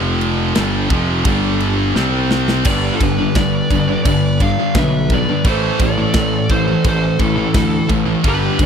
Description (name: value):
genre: heavy metal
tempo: 86 BPM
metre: 4/4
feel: straight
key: A minor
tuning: A4 = 436 Hz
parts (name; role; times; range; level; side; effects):
- scooped high-gain guitar; riff; 0.0-8.7 s; F2 to C4; -20 LUFS; left 14 dB; distortion
- scooped high-gain guitar; riff; 0.0-8.7 s; F2 to C4; -20 LUFS; right 13 dB; distortion
- fuzz picked electric bass; bass; 0.0-8.7 s; F1 to D2; -20 LUFS; equal; overdrive
- tight metal drum kit; drums; 0.2-8.7 s; crash cymbal, kick drum, snare drum; -20 LUFS; equal; none
- high-gain lead guitar; melody; 2.7-8.7 s; A4 to F5; -22 LUFS; right 1 dB; distortion, slapback echo
- high-gain lead guitar; second line; 2.7-8.7 s; E4 to D5; -26 LUFS; right 4 dB; distortion
room: small room ambience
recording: dry, close 1970s-style studio recording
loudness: -13 LUFS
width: side -7 dB against mid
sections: 0.0-2.7 A section; 2.7-8.7 B section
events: drum fill 2.0-2.7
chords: 0.0 F5; 1.3 G5; 2.0 C5; 2.7 G; 5.5 A5